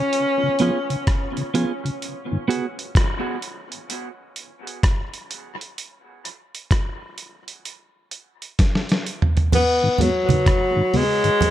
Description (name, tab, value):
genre	dub reggae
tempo	64 BPM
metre	4/4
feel	swing 64% on 16ths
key	G# dorian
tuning	A4 = 439 Hz
part	warm tenor saxophone	melody	0.0-1.5, 9.5-11.5 s	F#3 to C#4	-21 LUFS	left 1 dB	dub echo
part	dusty soul sampler-style drum kit	drums	0.1-11.5 s	crash cymbal, hi-hat, kick drum, rim click, snare drum, toms	-22 LUFS	equal	none
part	mellow tonewheel organ	accompaniment	0.4-2.4, 9.8-11.3 s	G#2 to F#4	-26 LUFS	left 1 dB	chorus vibrato, slow rotary speaker, dub echo
part	clean electric guitar	accompaniment	0.6-2.7 s	B3 to G#4	-27 LUFS	right 4 dB	dub echo
part	congas	percussion	9.5-11.5 s	none	-22 LUFS	right 3 dB	none
room	light reverb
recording	echo-heavy mix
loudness	-18 LUFS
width	side -12 dB against mid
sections	0.0-9.5 A section; 9.5-11.5 B section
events	break 2.0-9.5; drum fill 8.6-9.5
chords	0.0 C#7; 2.0 G#m7; 5.8 N.C.; 9.5 G#m7